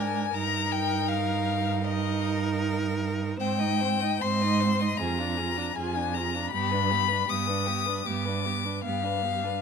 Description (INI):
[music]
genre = classical, slow romantic movement for string quartet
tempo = 78 BPM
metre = 4/4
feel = rubato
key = Eb major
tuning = A4 = 440 Hz
[part]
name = warm violin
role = melody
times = 0.0-9.6 s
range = Eb5 to Eb6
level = -28 LUFS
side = left 10 dB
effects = none
[part]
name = rich violin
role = second line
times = 0.0-9.6 s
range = F4 to Eb5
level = -35 LUFS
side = left 2 dB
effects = none
[part]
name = warm viola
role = accompaniment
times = 0.0-9.6 s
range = B3 to F4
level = -33 LUFS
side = right 7 dB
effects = none
[part]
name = rich cello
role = bass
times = 0.0-9.5 s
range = F2 to Ab2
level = -29 LUFS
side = right 5 dB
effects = none
[sound]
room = moderate recital hall reverb, RT60 1.5 s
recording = close, detailed microphones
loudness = -25 LUFS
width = side -6 dB against mid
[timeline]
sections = 0.0-9.6 A section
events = none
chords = 0.3 Eb/G; 3.4 Abmaj7; 5.0 Ddim/F; 6.5 G